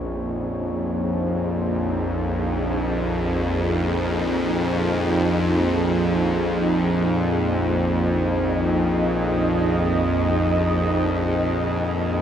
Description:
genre	dark ambient drone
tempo	free time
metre	none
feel	none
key	unclear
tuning	A4 = 440 Hz
part	deep dark ambient pad	sustained chords	0.0-12.2 s	Bb3 to Eb5	-25 LUFS	right 1 dB	chorus, built-in reverb
part	bowed-like drone	drone	0.0-12.2 s	Bb1 to F2	-21 LUFS	equal	built-in reverb
room	wet cathedral reverb, RT60 6.7 s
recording	none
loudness	-20 LUFS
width	side -9 dB against mid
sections	0.0-12.2 A section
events	fade-in on ambient pad 0.0-12.2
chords	0.0 Bbm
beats	free time

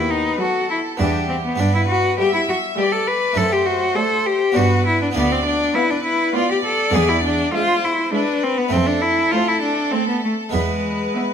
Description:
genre	classical, baroque-style concerto movement with solo episodes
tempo	101 BPM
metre	3/4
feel	straight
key	unclear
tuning	A4 = 440 Hz
part	clear cello	melody	0.0-11.3 s	G#3 to B4	-19 LUFS	left 2 dB	none
part	clear chamber violin section	second line	0.0-11.3 s	G4 to E5	-25 LUFS	left 1 dB	none
part	harpsichord	accompaniment	0.0-11.3 s	D2 to F#4	-27 LUFS	right 2 dB	none
part	clear chamber cello section	bass	0.0-11.0 s	D2 to G2	-22 LUFS	right 2 dB	none
part	rich chamber violin section	melody	0.4-11.3 s	B4 to F5	-33 LUFS	left 3 dB	none
part	rich studio viola section	accompaniment	0.4-11.3 s	F#3 to B3	-26 LUFS	right 2 dB	none
room	moderate recital hall reverb, RT60 1.5 s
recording	close, detailed microphones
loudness	-16 LUFS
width	side -8 dB against mid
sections	0.0-11.3 A section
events	none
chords	0.0 B/D#; 1.0 Em; 1.6 G; 3.4 D/F#; 4.6 G; 5.2 Bdim/D; 6.9 E7; 8.7 F; 10.5 E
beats	0.40 1.00 | 1.60 2.20 2.79 | 3.38 3.97 4.57 | 5.16 5.75 6.35 | 6.95 7.54 8.14 | 8.73 9.33 9.94 | 10.55 11.16

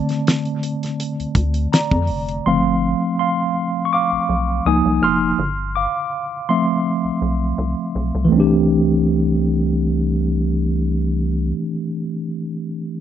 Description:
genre	R&B, neo-soul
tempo	82 BPM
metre	4/4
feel	swing 53% on 16ths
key	C major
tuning	A4 = 440 Hz
part	mellow tine electric piano	accompaniment	0.0-13.0 s	D3 to F6	-18 LUFS	equal	medium stereo tremolo
part	damped 70s drum kit	drums	0.1-2.4 s	hi-hat, kick drum, snare drum	-18 LUFS	equal	none
part	rubbery square bass	bass	1.2-11.5 s	F1 to F2	-22 LUFS	equal	none
room	little or no reverb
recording	recorded outdoors, with no room sound, nothing above 8.0 kHz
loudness	-17 LUFS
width	side -10 dB against mid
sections	0.0-8.3 A section; 8.3-11.2 B section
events	tine electric piano solo 0.0-8.3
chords	0.0 Bbmaj7; 2.5 G7sus4; 4.7 Db69; 5.4 G7sus4; 8.3 C69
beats	0.26 0.99 1.72 | 2.46 3.19 3.92 4.65 | 5.38 6.11 6.84 7.58 | 8.31 9.04 9.77 10.50

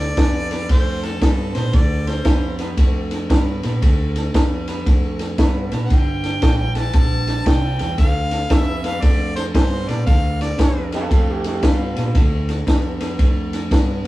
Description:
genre	electric blues shuffle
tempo	115 BPM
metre	4/4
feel	swing 64% on 8ths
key	D minor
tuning	A4 = 441 Hz
part	clear harmonica	melody	0.0-2.6, 5.9-10.9 s	A4 to A5	-26 LUFS	equal	analog delay
part	electric guitar through a small old amp	riff	0.0-14.1 s	G2 to B3	-26 LUFS	equal	none
part	vintage muted fingered electric bass	bass	0.0-14.1 s	G1 to Bb2	-25 LUFS	equal	none
part	compact cocktail drum kit	drums	0.0-14.1 s	kick drum, ride cymbal, snare drum	-17 LUFS	equal	none
part	electric slide guitar	second line	10.9-12.1 s	E4 to A4	-27 LUFS	right 2 dB	analog delay
room	moderate small room reverb, RT60 0.5 s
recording	rough rehearsal-room recording, studio ambience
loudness	-16 LUFS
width	side -17 dB against mid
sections	0.0-14.1 A section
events	none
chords	0.0 Dm; 5.9 Gmadd9; 8.0 Dm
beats	0.17 0.69 1.22 | 1.74 2.26 2.78 3.30 | 3.82 4.34 4.86 5.38 | 5.90 6.42 6.94 7.46 | 7.99 8.51 9.03 9.55 | 10.07 10.59 11.11 11.63 | 12.15 12.68 13.20 13.72

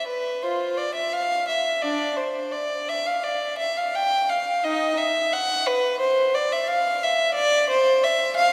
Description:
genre	classical, baroque-style suite movement for unaccompanied violin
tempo	86 BPM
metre	4/4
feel	rubato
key	unclear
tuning	A4 = 442 Hz
part	warm violin	solo	0.0-8.5 s	D4 to G5	-23 LUFS	equal	none
room	wet church reverb, RT60 3.1 s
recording	heard from further back in the room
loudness	-23 LUFS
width	mono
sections	0.0-8.5 A section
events	none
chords	none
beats	0.43 1.14 | 1.84 2.54 3.24 3.94 | 4.63 5.32 6.00 6.68 | 7.36 8.05

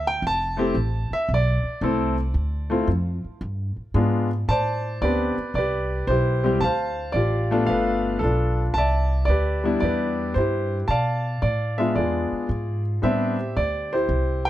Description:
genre	jazz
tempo	112 BPM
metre	4/4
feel	swing 67% on 8ths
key	unclear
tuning	A4 = 439 Hz
part	clear grand piano	melody	0.0-14.5 s	G3 to A5	-23 LUFS	left 1 dB	plate reverb
part	upright bass	bass	0.0-14.5 s	F1 to B2	-24 LUFS	equal	none
room	light reverb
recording	none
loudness	-21 LUFS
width	side -14 dB against mid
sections	0.0-4.5 A section; 4.5-14.5 B section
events	grand piano solo 0.0-4.5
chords	0.2 Fmaj7; 2.4 Dm; 3.4 G7b9; 4.5 Am11; 6.6 Dm7; 7.7 G9; 8.8 Cmaj9; 10.9 Bm7b5; 12.0 E7b9; 13.0 Am11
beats	| 0.22 0.75 1.29 1.82 | 2.35 2.88 3.42 3.95 | 4.49 5.02 5.55 6.09 | 6.62 7.15 7.69 8.22 | 8.75 9.29 9.82 10.36 | 10.89 11.42 11.96 12.49 | 13.03 13.56 14.09

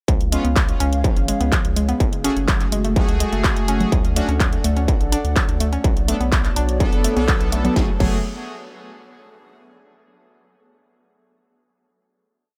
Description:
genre	melodic techno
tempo	125 BPM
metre	4/4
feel	straight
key	F# harmonic minor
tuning	A4 = 440 Hz
part	dark analog pad	sustained chords	0.1-8.0 s	A3 to A5	-32 LUFS	equal	chorus, sidechain pumping
part	woody wave-folded pluck	arpeggios	0.1-8.2 s	E#3 to D4	-28 LUFS	equal	chorus, sidechain pumping, digital delay
part	round analog bass	bass	0.1-8.2 s	F#1 to D2	-25 LUFS	equal	sidechain pumping
part	electronic kick drum	drums	0.1-8.1 s	none	-22 LUFS	equal	distortion, overdrive
part	techno drum kit	drums	0.1-8.1 s	congas, crash cymbal, handclaps, hi-hat, snare drum	-28 LUFS	equal	overdrive, sidechain pumping on hats, sidechain pumping on perc, sidechain pumping on cymbals
part	analog synth brass	stabs	0.3-8.2 s	A3 to A4	-29 LUFS	equal	chorus, sidechain pumping, digital delay
room	digital ambience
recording	none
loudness	-19 LUFS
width	mono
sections	0.1-7.8 drop; 7.8-9.7 final chord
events	drop 0.1-7.8; band accent 7.3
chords	0.1 C#7; 2.0 F#madd9; 3.9 Dmaj7; 5.8 Bm7; 7.8 F#madd9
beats	| 0.08 0.56 1.04 1.52 | 2.00 2.48 2.96 3.44 | 3.92 4.40 4.88 5.36 | 5.84 6.32 6.80 7.28 | 7.76

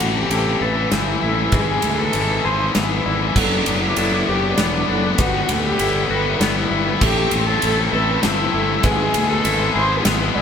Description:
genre	post-rock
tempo	98 BPM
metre	3/4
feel	straight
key	A dorian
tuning	A4 = 442 Hz
part	dark cello	melody	0.0-10.4 s	B3 to C5	-23 LUFS	equal	analog delay
part	dark analog pad	sustained chords	0.0-10.4 s	C4 to E6	-31 LUFS	right 1 dB	chorus
part	felt-muted upright piano	arpeggios	0.0-10.4 s	A4 to B5	-30 LUFS	right 4 dB	none
part	twangy electric guitar	arpeggios	0.0-10.4 s	A2 to A4	-28 LUFS	left 3 dB	none
part	distorted electric guitar	riff	0.0-10.4 s	G#2 to C4	-22 LUFS	left 7 dB	overdrive
part	fuzz fingered electric bass	bass	0.0-10.4 s	E1 to D2	-23 LUFS	equal	overdrive
part	huge arena drum kit	drums	0.0-10.2 s	crash cymbal, kick drum, ride cymbal, snare drum	-22 LUFS	equal	none
room	wet stone room reverb, RT60 1.0 s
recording	band playing live in one room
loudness	-16 LUFS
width	side -7 dB against mid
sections	0.0-10.4 A section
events	build-up 0.0-10.4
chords	0.0 Am; 1.5 E/G#; 3.4 Bm/F#; 5.2 Emadd9/G; 7.0 Am; 8.8 E/G#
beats	0.31 0.92 | 1.53 2.14 2.75 | 3.36 3.97 4.58 | 5.19 5.80 6.41 | 7.02 7.63 8.23 | 8.84 9.45 10.05

